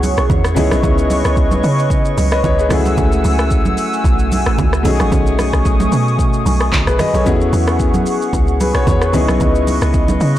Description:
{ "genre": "amapiano", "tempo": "112 BPM", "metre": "4/4", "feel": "swing 55% on 16ths", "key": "E major", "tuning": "A4 = 440 Hz", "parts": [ { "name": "clear concert grand piano", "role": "accompaniment", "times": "0.0-10.4 s", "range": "F#3 to D#5", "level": "-19 LUFS", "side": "left 4 dB", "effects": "none" }, { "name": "hollow soft pad", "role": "sustained chords", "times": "0.0-10.4 s", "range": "A3 to E6", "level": "-21 LUFS", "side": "right 2 dB", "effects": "chorus, sidechain pumping" }, { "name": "deep log drum bass", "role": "bass", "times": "0.0-10.4 s", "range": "A1 to C#3", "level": "-17 LUFS", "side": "equal", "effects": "none" }, { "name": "deep house drum kit", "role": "drums", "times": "0.0-10.4 s", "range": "handclaps, hi-hat, kick drum, rim click, shaker", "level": "-18 LUFS", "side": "equal", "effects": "none" }, { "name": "congas", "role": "percussion", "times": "0.0-10.2 s", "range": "none", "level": "-22 LUFS", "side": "right 4 dB", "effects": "none" } ], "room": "digital ambience", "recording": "blown-out, overdriven recording, overdrive", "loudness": "-12 LUFS", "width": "side -13 dB against mid", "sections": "0.0-10.4 A section", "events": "none", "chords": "0.0 E69; 0.6 C#m9; 2.7 F#m9/C#; 4.9 B13; 7.3 E69; 9.1 C#m9" }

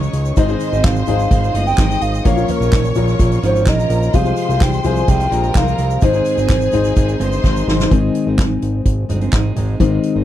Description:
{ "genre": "piano-driven pop", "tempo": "127 BPM", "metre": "4/4", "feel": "straight", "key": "Ab major", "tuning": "A4 = 440 Hz", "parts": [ { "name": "clear studio violin section", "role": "second line", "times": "0.0-7.9 s", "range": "Ab4 to Eb6", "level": "-28 LUFS", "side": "left 1 dB", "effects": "none" }, { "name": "dark upright piano", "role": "accompaniment", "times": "0.0-10.2 s", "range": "Ab2 to Db5", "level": "-21 LUFS", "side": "left 8 dB", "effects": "none" }, { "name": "fingerpicked steel-string acoustic guitar", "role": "riff", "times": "0.0-10.2 s", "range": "Ab2 to Bb4", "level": "-24 LUFS", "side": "right 6 dB", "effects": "none" }, { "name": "fat analog bass", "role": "bass", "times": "0.0-10.2 s", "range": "G1 to Db2", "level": "-18 LUFS", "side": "equal", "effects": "none" }, { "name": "egg shaker", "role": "percussion", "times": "0.0-7.9 s", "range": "none", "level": "-41 LUFS", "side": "right 24 dB", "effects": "none" }, { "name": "soft-mallet drum kit", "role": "drums", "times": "0.1-10.1 s", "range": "handclaps, hi-hat, kick drum, snare drum, toms", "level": "-17 LUFS", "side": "right 1 dB", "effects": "none" }, { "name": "hollow clarinet-like synth lead", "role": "melody", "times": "0.4-7.6 s", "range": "Bb4 to Ab5", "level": "-20 LUFS", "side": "equal", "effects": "chorus" } ], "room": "little or no reverb", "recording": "none", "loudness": "-13 LUFS", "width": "side -12 dB against mid", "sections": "0.0-7.9 A section; 7.9-10.2 B section", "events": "drum fill 7.4-7.9; upright piano solo 7.9-10.2", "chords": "0.4 Ab; 2.3 Bbm; 4.1 Fm/C; 6.0 Ab" }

